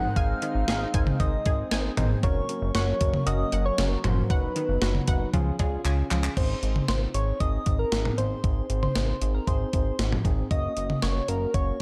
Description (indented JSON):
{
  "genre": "synth-pop",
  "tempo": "116 BPM",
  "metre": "4/4",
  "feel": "straight",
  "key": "Ab mixolydian",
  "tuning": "A4 = 439 Hz",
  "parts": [
    { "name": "soft struck synth lead", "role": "melody", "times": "0.0-11.8 s", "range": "Bb4 to Gb5", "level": "-33 LUFS", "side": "equal", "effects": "chorus, tape echo" },
    { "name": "tine electric piano", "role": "accompaniment", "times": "0.0-11.8 s", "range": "Bb3 to Db5", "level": "-37 LUFS", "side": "equal", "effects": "none" },
    { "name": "sweeping resonant pad", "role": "sustained chords", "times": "0.0-6.4 s", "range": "Db3 to Ab4", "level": "-39 LUFS", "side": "equal", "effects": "chorus" },
    { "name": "analog pluck", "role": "arpeggios", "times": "0.0-6.3 s", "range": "Db3 to Ab5", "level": "-38 LUFS", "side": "equal", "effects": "chorus, tape echo" },
    { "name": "chorused synth bass", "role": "bass", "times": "0.0-11.7 s", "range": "Gb1 to Db2", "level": "-30 LUFS", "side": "equal", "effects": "none" },
    { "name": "gated 80s digital drum machine", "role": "drums", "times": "0.2-11.7 s", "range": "cowbell, crash cymbal, handclaps, hi-hat, kick drum, snare drum, toms", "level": "-29 LUFS", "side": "equal", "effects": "gated reverb, gated reverb snare" }
  ],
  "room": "light reverb",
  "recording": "dark, warm production",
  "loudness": "-26 LUFS",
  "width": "mono",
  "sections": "0.0-6.4 A section; 6.4-11.8 B section",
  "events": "drum fill 5.9-6.4",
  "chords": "0.0 Ab; 2.2 Gb; 4.3 B/F#; 5.3 Db; 6.4 Ab; 10.5 Gb"
}